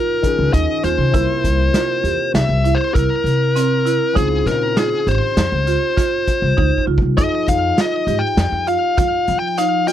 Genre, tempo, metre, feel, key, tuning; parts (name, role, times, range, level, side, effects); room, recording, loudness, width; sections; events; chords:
progressive instrumental, band music in an uneven meter; 100 BPM; 5/4; straight; F minor; A4 = 445 Hz
bluesy overdriven lead guitar; melody; 0.0-9.9 s; Ab4 to G5; -19 LUFS; left 4 dB; distortion
dark baby grand piano; accompaniment; 0.0-9.9 s; C3 to Ab4; -28 LUFS; left 9 dB
marimba with medium mallets; arpeggios; 0.0-9.9 s; C4 to G4; -22 LUFS; right 17 dB
vintage drum kit; drums; 0.2-9.9 s; hi-hat, kick drum, snare drum; -21 LUFS; equal
upright bass; bass; 0.4-9.9 s; Ab1 to F3; -19 LUFS; equal
little or no reverb; -15 LUFS; side -10 dB against mid
0.0-9.9 A section
drum fill 6.6-7.2
0.0 Eb7sus4; 1.1 C7; 4.2 Dbmaj7; 7.2 Fm7